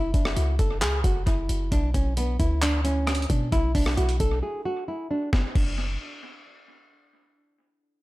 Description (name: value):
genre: hip hop, trap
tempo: 133 BPM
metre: 4/4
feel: half-time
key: unclear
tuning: A4 = 437 Hz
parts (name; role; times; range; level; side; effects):
- nylon-string guitar; melody; 0.0-5.3 s; B3 to A4; -29 LUFS; equal; low-pass filter, analog delay
- clean 808-style bass; bass; 0.0-6.0 s; F#1 to B2; -26 LUFS; equal; none
- boom bap sampler-style drum kit; drums; 0.1-5.7 s; crash cymbal, handclaps, hi-hat, kick drum, rim click, snare drum; -26 LUFS; equal; analog delay
room: little or no reverb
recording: echo-heavy mix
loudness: -22 LUFS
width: side -19 dB against mid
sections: 0.0-5.3 A section; 5.3-7.1 B section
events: break 4.4-5.3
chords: 0.0 F#5; 1.7 Bm; 5.3 N.C.